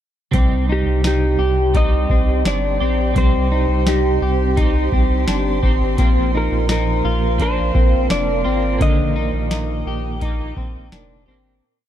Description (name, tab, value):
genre	dream pop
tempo	85 BPM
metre	4/4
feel	straight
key	unclear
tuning	A4 = 435 Hz
part	twelve-string electric guitar	accompaniment	0.3-11.9 s	Bb2 to G4	-25 LUFS	right 5 dB	tremolo, analog chorus
part	ethereal airy pad	sustained chords	1.3-11.6 s	G4 to D6	-26 LUFS	right 2 dB	ensemble chorus, built-in reverb
part	electric guitar at the edge of break-up	arpeggios	0.3-11.6 s	D3 to G4	-24 LUFS	left 4 dB	analog chorus, tape echo
part	round analog bass	bass	0.3-11.6 s	F1 to C2	-20 LUFS	equal	none
part	booming analog drum machine	drums	0.3-11.1 s	hi-hat, kick drum, snare drum	-18 LUFS	equal	none
part	electric slide guitar	melody	0.7-10.9 s	G4 to Eb5	-24 LUFS	equal	tape echo
room	light reverb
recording	dark, warm production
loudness	-15 LUFS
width	side -11 dB against mid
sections	0.3-11.6 verse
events	fade-out 8.8-11.6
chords	0.3 Cm; 6.0 Bbsus2; 8.8 Ebmaj7/Bb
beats	| 0.34 1.04 1.75 2.45 | 3.16 3.87 4.57 5.28 | 5.98 6.69 7.39 8.10 | 8.81 9.51 10.22 10.92